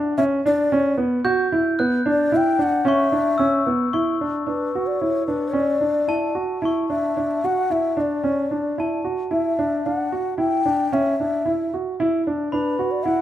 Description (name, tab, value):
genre	contemporary instrumental, chamber music in an uneven meter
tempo	112 BPM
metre	5/4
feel	straight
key	E dorian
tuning	A4 = 440 Hz
part	dark grand piano	arpeggios	0.0-13.2 s	B3 to F#4	-21 LUFS	right 1 dB	none
part	breathy mellow bass bansuri	melody	0.2-13.2 s	B4 to G5	-23 LUFS	left 2 dB	none
part	glockenspiel with soft plastic mallets	texture	1.2-13.2 s	A5 to G6	-29 LUFS	left 2 dB	none
room	light reverb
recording	none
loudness	-19 LUFS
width	side -12 dB against mid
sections	0.0-3.9 A section; 3.9-13.2 B section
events	none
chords	0.0 Em7; 3.9 E9sus4